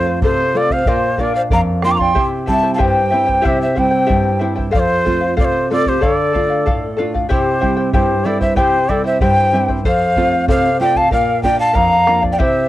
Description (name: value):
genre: andean folk, Andean ensemble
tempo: 94 BPM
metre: 2/4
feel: straight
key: unclear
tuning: A4 = 440 Hz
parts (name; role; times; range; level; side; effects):
- breathy quena; melody; 0.0-12.7 s; C5 to D6; -17 LUFS; equal; cassette tape
- reedy pan flute; second line; 0.0-12.7 s; F4 to Bb5; -20 LUFS; equal; cassette tape, plate reverb
- charango; accompaniment; 0.0-12.7 s; E4 to G5; -21 LUFS; left 3 dB; cassette tape, plate reverb
- nylon-string guitar; accompaniment; 0.0-12.7 s; F2 to F4; -20 LUFS; right 2 dB; cassette tape
- bombo; percussion; 0.2-12.5 s; none; -20 LUFS; equal; none
room: moderate booth ambience, RT60 0.2 s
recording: home recording on cassette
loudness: -13 LUFS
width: side -15 dB against mid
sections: 0.0-7.3 A section; 7.3-12.7 A section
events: none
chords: 0.0 F; 0.9 Bb; 2.2 C; 4.7 F; 6.0 Dm; 7.3 C; 9.9 F; 11.1 Bb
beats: 0.23 | 0.88 1.52 | 2.17 2.81 | 3.45 4.10 | 4.74 5.38 | 6.02 6.66 | 7.30 7.94 | 8.58 9.21 | 9.85 10.49 | 11.12 11.76 | 12.40